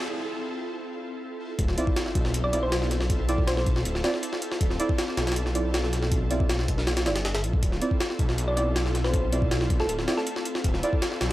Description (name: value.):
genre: drum and bass, jungle.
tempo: 159 BPM.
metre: 4/4.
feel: straight.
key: D dorian.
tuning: A4 = 435 Hz.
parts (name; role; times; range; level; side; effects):
ethereal airy pad; sustained chords; 0.0-11.3 s; C4 to A4; -34 LUFS; equal; ensemble chorus, built-in reverb.
riser and sub drop; sound effects; 0.0-3.1 s; none; -37 LUFS; equal; none.
detuned saw bass; bass; 1.6-11.3 s; D1 to B1; -27 LUFS; equal; tube saturation.
jungle sampler-style drum kit; drums; 1.6-11.3 s; hi-hat, kick drum, snare drum; -26 LUFS; equal; overdrive, high-pass filter on hats, studio reverb, high-pass filter on kick, high-pass filter on snare.
deep mellow chord stab; stabs; 1.8-10.9 s; C4 to D5; -32 LUFS; right 2 dB; chorus, vintage 12-bit sampler grit, dub echo.
thumb-piano-like synth pluck; melody; 2.4-3.6, 8.5-10.7 s; A4 to D5; -32 LUFS; equal; chorus, dub echo.
room: little or no reverb.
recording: dry, gritty hardware recording.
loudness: -23 LUFS.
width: side -16 dB against mid.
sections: 0.0-1.6 A section; 1.6-11.3 B section.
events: build-up 0.0-1.6; break 0.1-1.6; drop 1.6-11.3; impact 1.6-3.1.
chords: 0.0 Dm9 (rootless); 1.6 Dm9.